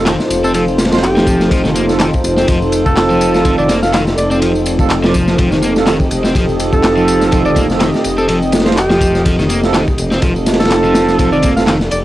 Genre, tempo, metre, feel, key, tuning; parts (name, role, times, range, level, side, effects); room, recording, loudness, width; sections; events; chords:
breakbeat, breaks; 124 BPM; 4/4; swing 56% on 16ths; F mixolydian; A4 = 441 Hz
dark analog pad; sustained chords; 0.0-12.0 s; C4 to Eb5; -18 LUFS; equal; chorus, sidechain pumping, cassette tape
dark brass ensemble; stabs; 0.0-11.7 s; C4 to D5; -20 LUFS; right 7 dB; cassette tape, analog delay
dark detuned saw bass; bass; 0.0-12.0 s; F1; -19 LUFS; equal; tube saturation
crunchy overdriven guitar; riff; 0.1-11.8 s; Eb3 to C4; -19 LUFS; left 1 dB; tube saturation, cassette tape, analog delay
crunchy breakbeat drum kit; drums; 0.1-12.0 s; kick drum, ride cymbal, snare drum; -16 LUFS; equal
electronic handclaps and tambourine; drums; 0.1-12.0 s; -23 LUFS; left 1 dB
mellow alto saxophone; melody; 0.4-12.0 s; G4 to F5; -18 LUFS; equal; AM radio sound, cassette tape, analog delay
light reverb; home recording on cassette; -10 LUFS; side -15 dB against mid
0.0-12.0 A section
0.0 F7